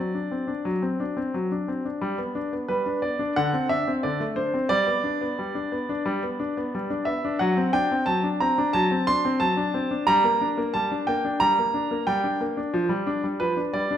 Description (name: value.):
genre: classical-period piano sonatina.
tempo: 89 BPM.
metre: 4/4.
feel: straight.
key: G major, G minor from 7.4 s.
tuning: A4 = 439 Hz.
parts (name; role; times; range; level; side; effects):
bright grand piano; solo; 0.0-14.0 s; D3 to C6; -22 LUFS; equal; none.
room: wet recital hall reverb, RT60 1.3 s.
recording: dark, warm production.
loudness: -22 LUFS.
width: side -10 dB against mid.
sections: 0.0-14.0 A section.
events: none.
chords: 0.0 D7/F#; 2.0 G; 3.4 D5; 4.7 G; 7.4 D7/F#; 10.1 Gm; 12.7 G5/F.